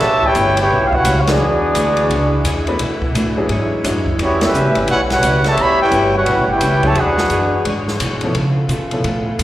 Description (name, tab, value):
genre	jazz, big band swing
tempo	173 BPM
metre	4/4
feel	swing 63% on 8ths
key	unclear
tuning	A4 = 440 Hz
part	warm trumpet section	melody	0.0-7.7 s	B3 to B5	-15 LUFS	equal	slapback echo
part	dark trombone section	second line	0.0-7.7 s	C#3 to G4	-22 LUFS	right 2 dB	slapback echo
part	vintage hollow-body jazz guitar	accompaniment	0.0-9.4 s	A2 to C#5	-26 LUFS	left 3 dB	slapback echo
part	clear saxophone section	sustained chords	0.0-9.4 s	C#3 to C#5	-26 LUFS	equal	none
part	upright bass	bass	0.0-9.4 s	G1 to C#3	-20 LUFS	equal	none
part	open jazz drum kit	drums	0.0-9.4 s	hi-hat, kick drum, ride cymbal, snare drum	-24 LUFS	left 1 dB	none
part	warm baby grand piano	accompaniment	1.3-4.5, 6.8-9.0 s	F3 to C#5	-22 LUFS	left 1 dB	slapback echo
room	light reverb, studio reverb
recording	live gig heard through the venue's PA, recital hall reverb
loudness	-13 LUFS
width	side -14 dB against mid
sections	0.0-9.4 A section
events	band accent 1.2, 4.4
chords	0.0 A13; 1.4 E13; 2.8 Bm7; 3.5 E13; 4.2 A13; 7.0 E13; 8.3 C#7b13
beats	| 0.01 0.36 0.71 1.05 | 1.40 1.75 2.10 2.45 | 2.79 3.14 3.49 3.84 | 4.18 4.53 4.88 5.23 | 5.57 5.92 6.27 6.61 | 6.96 7.31 7.65 8.00 | 8.35 8.69 9.04 9.39